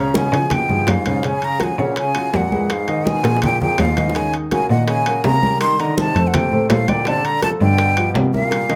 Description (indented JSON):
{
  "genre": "Afro-Cuban jazz",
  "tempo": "165 BPM",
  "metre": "4/4",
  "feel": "straight",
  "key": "unclear",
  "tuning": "A4 = 440 Hz",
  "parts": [
    { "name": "breathy hollow jazz flute", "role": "melody", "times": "0.0-8.8 s", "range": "F5 to C6", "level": "-23 LUFS", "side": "equal", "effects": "plate reverb" },
    { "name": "bright trombone", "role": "second line", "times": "0.0-8.8 s", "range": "Ab2 to Eb3", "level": "-29 LUFS", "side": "equal", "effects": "none" },
    { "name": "warm concert grand piano", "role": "accompaniment", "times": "0.0-8.8 s", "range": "Db3 to Eb5", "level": "-25 LUFS", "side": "equal", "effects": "none" },
    { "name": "warm cello", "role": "bass", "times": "0.0-8.8 s", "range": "Db2 to Db3", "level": "-23 LUFS", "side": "equal", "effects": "none" },
    { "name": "bongos", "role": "percussion", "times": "0.1-8.8 s", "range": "none", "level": "-29 LUFS", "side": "equal", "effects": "none" },
    { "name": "congas", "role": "percussion", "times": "0.2-8.8 s", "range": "none", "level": "-27 LUFS", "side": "equal", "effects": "none" },
    { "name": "timbales", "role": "percussion", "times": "0.2-8.8 s", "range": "none", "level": "-29 LUFS", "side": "equal", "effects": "none" }
  ],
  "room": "moderate club reverb, RT60 0.6 s",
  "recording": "none",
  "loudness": "-18 LUFS",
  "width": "mono",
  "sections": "0.0-8.8 A section",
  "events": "drum fill 3.2-4.2, 8.5",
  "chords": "0.0 Db7; 1.2 Gbmaj9; 2.7 Fm7b5; 3.4 Bb5; 4.2 Ebm7; 5.6 Cm7; 6.3 Fadd9; 7.1 Bb6; 7.8 G7"
}